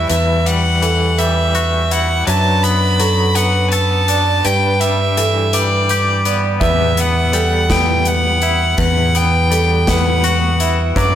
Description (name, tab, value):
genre	post-rock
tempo	55 BPM (dotted quarters)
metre	6/8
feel	straight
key	E minor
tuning	A4 = 440 Hz
part	bright violin	melody	0.0-11.2 s	D5 to B5	-17 LUFS	equal	digital delay
part	pedal steel guitar	sustained chords	0.0-11.2 s	E3 to E5	-29 LUFS	right 2 dB	wide subtle chorus
part	twangy electric guitar	arpeggios	0.0-11.2 s	E2 to A4	-21 LUFS	left 4 dB	tremolo, digital delay
part	vibraphone with hard mallets	arpeggios	0.0-11.2 s	A4 to E5	-22 LUFS	right 3 dB	digital delay
part	overdriven fingered electric bass	bass	0.0-11.2 s	E2 to G2	-17 LUFS	equal	none
part	big rock drum kit	drums	0.1-11.1 s	hi-hat, kick drum, snare drum	-23 LUFS	left 1 dB	none
room	light reverb, studio reverb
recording	none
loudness	-12 LUFS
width	side -10 dB against mid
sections	0.0-11.2 A section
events	none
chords	0.0 Emadd9; 2.3 D6/F#; 4.4 G6; 6.6 Emadd9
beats	| 0.10 1.18 | 2.27 3.36 | 4.45 5.53 | 6.62 7.71 | 8.79 9.88 | 10.96